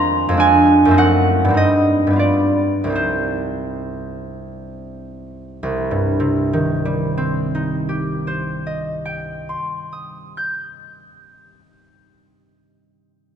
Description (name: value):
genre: classical, solo harp piece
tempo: 60-105 BPM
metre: 3/4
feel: rubato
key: C minor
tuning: A4 = 441 Hz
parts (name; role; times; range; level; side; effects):
- concert harp; solo; 0.0-12.9 s; C2 to G6; -16 LUFS; right 1 dB; none
room: wet concert hall reverb, RT60 2.5 s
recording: nothing above 10.6 kHz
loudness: -16 LUFS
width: side -8 dB against mid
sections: 0.0-5.6 A section; 5.6-11.4 B section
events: slowing down 0.1-5.6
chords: 0.0 Dm7b5/F; 1.0 F#dim7; 1.5 Cm/G; 2.2 G7; 2.9 Cm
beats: 0.37 | 0.95 1.54 2.20 | 2.95 3.79 4.67 | 5.64 6.57 7.52 | 8.48 9.47 10.46